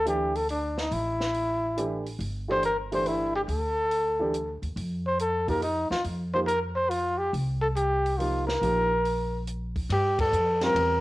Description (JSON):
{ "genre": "modal jazz", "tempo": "140 BPM", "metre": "3/4", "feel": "swing 68% on 8ths", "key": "unclear", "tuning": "A4 = 444 Hz", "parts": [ { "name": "breathy trumpet", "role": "melody", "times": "0.0-11.0 s", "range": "D4 to C5", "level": "-26 LUFS", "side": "equal", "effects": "cassette tape" }, { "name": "upright bass", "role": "bass", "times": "0.0-11.0 s", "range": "G1 to G2", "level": "-32 LUFS", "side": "equal", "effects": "none" }, { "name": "warm baby grand piano", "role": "accompaniment", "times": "0.1-11.0 s", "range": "E3 to Bb4", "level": "-31 LUFS", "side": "right 2 dB", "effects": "none" }, { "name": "compact cocktail drum kit", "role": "drums", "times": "0.1-10.9 s", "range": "hi-hat, kick drum, ride cymbal, snare drum", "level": "-37 LUFS", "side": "equal", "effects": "cassette tape" } ], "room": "light reverb, small room ambience", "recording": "home recording on cassette", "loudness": "-25 LUFS", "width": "side -18 dB against mid", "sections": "0.0-9.9 A section; 9.9-11.0 B section", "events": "band accent 10.1", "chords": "0.0 Dsus24; 4.8 F9sus4; 9.9 Gm11" }